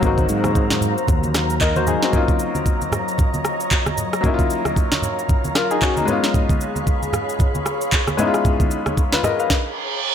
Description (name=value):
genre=amapiano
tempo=114 BPM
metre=4/4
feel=swing 58% on 16ths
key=Eb minor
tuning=A4 = 440 Hz
part: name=bright grand piano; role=accompaniment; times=0.0-9.6 s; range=Gb3 to F5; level=-22 LUFS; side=left 4 dB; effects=none
part: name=glassy FM pad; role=sustained chords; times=0.0-9.5 s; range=Gb3 to Cb6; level=-25 LUFS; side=equal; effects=ensemble chorus, built-in reverb
part: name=fretless electric bass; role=bass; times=0.0-1.9 s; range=Ab1 to Ab2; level=-22 LUFS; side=equal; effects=none
part: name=afro-pop drum kit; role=drums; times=0.0-9.6 s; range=handclaps, kick drum, rim click, shaker, snare drum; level=-20 LUFS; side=right 1 dB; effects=none
part: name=congas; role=percussion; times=0.0-9.4 s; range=none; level=-28 LUFS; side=right 2 dB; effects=none
part: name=reverse cymbal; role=sound effects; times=9.7-10.1 s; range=none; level=-22 LUFS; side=right 8 dB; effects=none
room=light reverb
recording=none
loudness=-17 LUFS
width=side -8 dB against mid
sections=0.0-10.1 A section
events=stop 9.5-10.1; reverse cymbal 9.7-10.1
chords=0.0 Ab13; 2.1 Ebm7; 6.1 Db7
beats=| 0.03 0.56 1.08 1.61 | 2.13 2.66 3.19 3.71 | 4.24 4.76 5.29 5.82 | 6.34 6.87 7.40 7.92 | 8.45 8.98 9.50 10.03